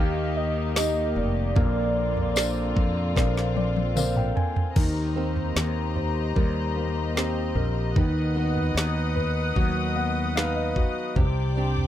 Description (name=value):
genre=pop ballad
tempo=75 BPM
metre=4/4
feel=straight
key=Eb major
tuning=A4 = 440 Hz
part: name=warm velvety synth lead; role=melody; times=0.0-4.0 s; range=D5 to F5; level=-30 LUFS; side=right 2 dB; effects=chorus
part: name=dark concert grand piano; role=accompaniment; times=0.0-11.9 s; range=C3 to Ab5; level=-30 LUFS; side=left 6 dB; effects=none
part: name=warm studio string section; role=sustained chords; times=0.0-11.9 s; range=D3 to D#6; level=-32 LUFS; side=left 2 dB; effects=none
part: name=fingerpicked steel-string acoustic guitar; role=arpeggios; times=0.0-11.9 s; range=Bb2 to B4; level=-32 LUFS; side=right 7 dB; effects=none
part: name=mellow fretless electric bass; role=bass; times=0.0-11.9 s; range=F1 to F2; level=-27 LUFS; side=equal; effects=none
part: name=smooth R&B drum kit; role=drums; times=0.8-11.9 s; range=crash cymbal, kick drum, snare drum, toms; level=-25 LUFS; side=equal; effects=none
part: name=tambourine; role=percussion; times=0.8-4.2 s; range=none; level=-34 LUFS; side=left 10 dB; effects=none
room=small room ambience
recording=dry, close 1970s-style studio recording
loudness=-22 LUFS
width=side -12 dB against mid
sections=0.0-4.8 A section; 4.8-11.9 B section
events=drum fill 3.2-4.8; grand piano fill 3.2-4.8, 9.6-11.2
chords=0.0 Eb; 1.6 Bbadd9; 4.8 Eb6; 8.0 B/D#; 11.2 Cmadd9